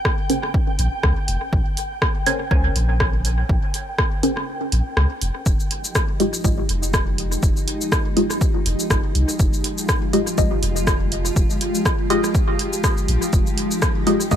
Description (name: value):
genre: dub techno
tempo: 122 BPM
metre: 4/4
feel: swing 56% on 16ths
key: F minor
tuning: A4 = 438 Hz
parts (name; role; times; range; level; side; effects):
- filtered dub chord stab; stabs; 0.0-14.4 s; Ab3 to Ab5; -24 LUFS; left 1 dB; phaser, sidechain pumping, dub echo
- flickering grainy texture; texture; 0.0-5.5 s; G5; -32 LUFS; equal; built-in reverb, sidechain pumping
- electronic kick drum; drums; 0.1-14.4 s; none; -21 LUFS; equal; overdrive
- punchy analog drum machine; drums; 0.1-14.4 s; cabasa, hi-hat, rim click; -25 LUFS; equal; dub echo
- soft dub sub bass; bass; 0.8-14.4 s; F1 to Db2; -21 LUFS; equal; sidechain pumping
- granular cloud pad; sustained chords; 5.8-14.4 s; F3 to G4; -26 LUFS; equal; built-in reverb, sidechain pumping
room: digital ambience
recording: faint mains hum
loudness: -18 LUFS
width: side -10 dB against mid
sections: 0.0-5.5 A section; 5.5-14.4 A section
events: filter sweep on synth stab 0.0-5.5; kick drops out 4.5-5.5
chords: 0.0 Bbm9; 5.5 Fm9